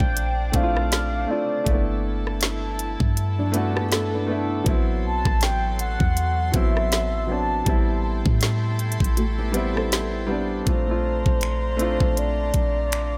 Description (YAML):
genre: contemporary R&B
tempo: 80 BPM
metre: 4/4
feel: swing 58% on 16ths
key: A dorian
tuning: A4 = 438 Hz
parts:
  - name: mellow horn-like synth lead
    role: melody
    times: 0.0-13.2 s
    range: C5 to A5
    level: -30 LUFS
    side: equal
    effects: chorus, delay
  - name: warm grand piano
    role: accompaniment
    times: 0.0-13.2 s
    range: F#3 to F#4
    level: -30 LUFS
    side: equal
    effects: none
  - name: warm studio string section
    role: sustained chords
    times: 0.0-13.2 s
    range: F#3 to C6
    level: -37 LUFS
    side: equal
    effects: none
  - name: warm 808-style bass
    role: bass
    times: 0.0-13.2 s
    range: G1 to A2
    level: -28 LUFS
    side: equal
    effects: none
  - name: trap drum kit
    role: drums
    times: 0.0-13.1 s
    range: finger snaps, hi-hat, kick drum, rim click, snare drum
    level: -25 LUFS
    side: equal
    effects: none
  - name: impact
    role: sound effects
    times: 0.0-1.7 s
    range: none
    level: barely audible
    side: none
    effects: none
  - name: nylon-string guitar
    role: arpeggios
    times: 3.4-4.6, 9.2-10.6 s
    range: F#3 to B4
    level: -32 LUFS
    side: equal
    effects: none
room: small room ambience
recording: none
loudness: -23 LUFS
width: mono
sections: 0.0-10.7 A section; 10.7-13.2 B section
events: impact 0.0-1.7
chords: 0.0 Bbmaj9; 1.7 G69; 4.7 Am69; 7.7 Am7; 10.7 Bbmaj9